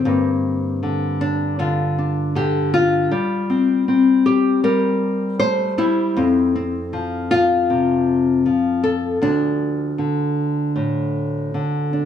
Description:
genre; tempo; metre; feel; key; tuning
folk, solo fingerstyle acoustic guitar; 79 BPM; 4/4; straight; D minor; A4 = 440 Hz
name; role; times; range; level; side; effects
nylon-string guitar; solo; 0.0-12.1 s; D2 to C5; -17 LUFS; left 2 dB; none
room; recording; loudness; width
moderate large studio reverb, RT60 1.3 s; small room ambience; -17 LUFS; side -9 dB against mid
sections
0.0-12.1 A section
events
none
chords
0.1 Gm; 3.1 Csus4/G; 6.2 F5; 9.2 Dm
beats
| 0.06 0.83 1.60 2.36 | 3.12 3.88 4.64 5.41 | 6.17 6.93 7.69 8.45 | 9.22 9.98 10.76 11.54

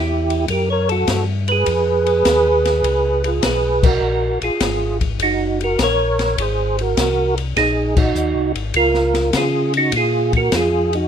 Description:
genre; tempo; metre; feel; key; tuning
soul jazz organ trio; 102 BPM; 4/4; swing 68% on 8ths; Db mixolydian; A4 = 439 Hz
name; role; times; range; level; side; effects
percussive tonewheel organ; melody; 0.0-11.1 s; Eb4 to C#5; -17 LUFS; right 2 dB; chorus vibrato, slow rotary speaker
mellow tonewheel organ; bass; 0.0-11.1 s; Gb1 to Db3; -22 LUFS; left 1 dB; slow rotary speaker
open jazz drum kit; drums; 0.3-11.0 s; crash cymbal, hi-hat, kick drum, ride cymbal, snare drum; -23 LUFS; left 3 dB; none
room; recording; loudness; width
light reverb; minimal, uncompressed stereo recording; -15 LUFS; side -8 dB against mid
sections
0.0-11.1 A section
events
band accent 3.7, 7.9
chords
0.0 Em69; 1.7 Db9; 4.0 Ebm7; 6.4 Ab9; 8.7 Dbadd9; 9.9 Bb5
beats
0.48 1.07 | 1.66 2.25 2.84 3.43 | 4.02 4.61 5.20 5.79 | 6.38 6.97 7.56 8.15 | 8.75 9.34 9.93 10.52

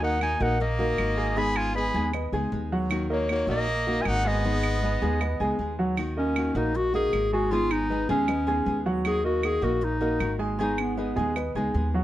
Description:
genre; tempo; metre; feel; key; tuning
latin, Cuban son and guajira; 156 BPM; 4/4; straight; Eb minor; A4 = 440 Hz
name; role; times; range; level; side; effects
warm clarinet; melody; 0.0-11.3 s; Cb4 to Cb6; -27 LUFS; equal; none
brilliant trumpet; second line; 0.0-5.6 s; Bb3 to Ab4; -33 LUFS; left 2 dB; slapback echo
nylon-string guitar; accompaniment; 0.0-12.0 s; Eb3 to Ab4; -32 LUFS; left 3 dB; none
warm concert grand piano; arpeggios; 0.0-12.0 s; Gb3 to Ab5; -30 LUFS; right 2 dB; none
upright bass; bass; 0.0-12.0 s; Ab1 to Eb2; -30 LUFS; equal; none
claves; percussion; 0.2-11.6 s; none; -35 LUFS; right 6 dB; none
room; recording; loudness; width
light reverb; none; -23 LUFS; side -14 dB against mid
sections
0.0-6.0 A section; 6.0-12.0 A section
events
none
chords
0.0 Ebm; 1.4 Abm; 2.9 Ebm; 4.4 Abm; 6.0 Ebm; 7.5 Abm; 9.1 Ebm; 10.6 Abm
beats
0.22 0.60 0.98 | 1.37 1.75 2.13 2.52 | 2.90 3.29 3.67 4.05 | 4.44 4.82 5.21 5.59 | 5.98 6.36 6.75 7.13 | 7.51 7.90 8.28 8.67 | 9.05 9.44 9.82 10.21 | 10.59 10.98 11.36 11.75

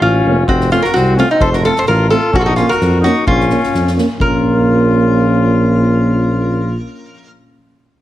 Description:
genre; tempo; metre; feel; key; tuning
balkan folk, Balkan brass band; 130 BPM; 2/4; swing 54% on 16ths; Bb harmonic minor; A4 = 440 Hz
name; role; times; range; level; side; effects
lap resonator guitar; melody; 0.0-7.3 s; Eb4 to C5; -15 LUFS; equal; none
warm trumpet; second line; 0.0-6.8 s; C4 to A4; -20 LUFS; left 4 dB; none
mellow tuba; bass; 0.0-6.8 s; F1 to F2; -16 LUFS; equal; none
mellow euphonium; accompaniment; 0.3-6.8 s; C4 to Db4; -21 LUFS; left 4 dB; none
mellow euphonium; accompaniment; 0.3-6.8 s; A3 to Bb3; -18 LUFS; right 4 dB; none
soft-mallet drum kit; percussion; 0.5-4.4 s; kick drum, snare drum; -22 LUFS; equal; none
room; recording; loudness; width
moderate recital hall reverb, RT60 1.8 s; heavily compressed radio sound; -11 LUFS; side -14 dB against mid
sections
0.0-4.2 A section; 4.2-6.0 B section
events
none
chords
0.5 F; 2.4 Bbm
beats
0.03 | 0.49 0.96 | 1.42 1.89 | 2.35 2.81 | 3.28 3.74 | 4.20 4.66 | 5.12 5.59

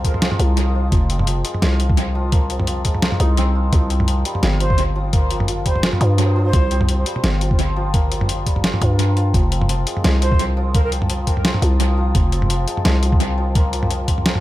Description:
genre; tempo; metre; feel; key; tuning
half-time drum and bass; 171 BPM; 4/4; swing 56% on 16ths, half-time; F minor; A4 = 440 Hz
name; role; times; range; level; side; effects
santur; arpeggios; 0.0-14.4 s; F3 to F4; -25 LUFS; left 1 dB; tape echo
growling 808-style bass; bass; 0.0-14.3 s; F1 to G2; -19 LUFS; equal; none
boom bap sampler-style drum kit; drums; 0.0-14.4 s; hi-hat, snare drum, toms; -22 LUFS; equal; small room reverb, analog delay
electronic kick drum; drums; 0.0-14.2 s; none; -18 LUFS; equal; small room reverb
breathy mellow jazz flute; melody; 4.6-6.8, 10.2-10.9 s; Bb4 to C5; -29 LUFS; right 2 dB; tape echo
room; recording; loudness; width
digital ambience; echo-heavy mix; -16 LUFS; side -15 dB against mid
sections
0.0-14.4 A section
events
none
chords
0.0 Fm; 3.7 C5; 9.3 Fm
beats
0.22 0.57 | 0.92 1.27 1.62 1.97 | 2.33 2.68 3.03 3.38 | 3.73 4.08 4.43 4.78 | 5.13 5.48 5.83 6.18 | 6.54 6.89 7.24 7.59 | 7.94 8.29 8.64 8.99 | 9.34 9.69 10.04 10.39 | 10.75 11.10 11.45 11.80 | 12.15 12.50 12.85 13.20 | 13.55 13.90 14.26

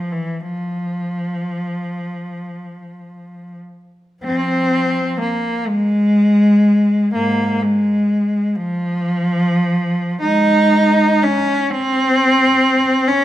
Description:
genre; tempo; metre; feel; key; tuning
classical, free, expressive piece for unaccompanied cello; 23-44 BPM (dotted quarters); 6/8; rubato; F minor; A4 = 440 Hz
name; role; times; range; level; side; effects
rich cello; solo; 0.0-13.2 s; Ab2 to Eb4; -15 LUFS; equal; none
room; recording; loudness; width
moderate recital hall reverb, RT60 1.5 s; minimal, uncompressed stereo recording; -14 LUFS; side -13 dB against mid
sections
0.0-4.2 A section; 4.2-13.2 B section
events
none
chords
none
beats
| 0.42 2.20 | 4.25 5.69 | 7.15 8.56 | 10.22 11.70 | 13.08

